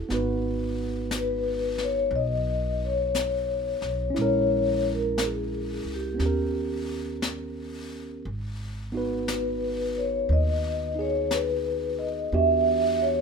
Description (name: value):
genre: jazz ballad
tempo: 59 BPM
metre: 4/4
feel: swing 66% on 8ths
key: G# minor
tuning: A4 = 438 Hz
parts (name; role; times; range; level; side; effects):
- bright tine electric piano; accompaniment; 0.0-13.2 s; G#3 to B4; -30 LUFS; right 3 dB; none
- upright bass; bass; 0.0-13.2 s; G#1 to E2; -31 LUFS; equal; none
- jazz brush drum kit; drums; 0.1-13.2 s; brushed snare drum, hi-hat, snare drum; -36 LUFS; left 3 dB; none
- vibraphone with medium mallets; melody; 1.2-13.2 s; G4 to E5; -26 LUFS; left 2 dB; none
room: little or no reverb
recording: minimal, uncompressed stereo recording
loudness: -24 LUFS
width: side -5 dB against mid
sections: 0.0-8.2 A section; 8.2-13.2 A section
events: none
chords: 0.1 G#m7; 4.1 A#m7b5; 6.2 D#7b13; 8.2 G#m7; 12.3 Em7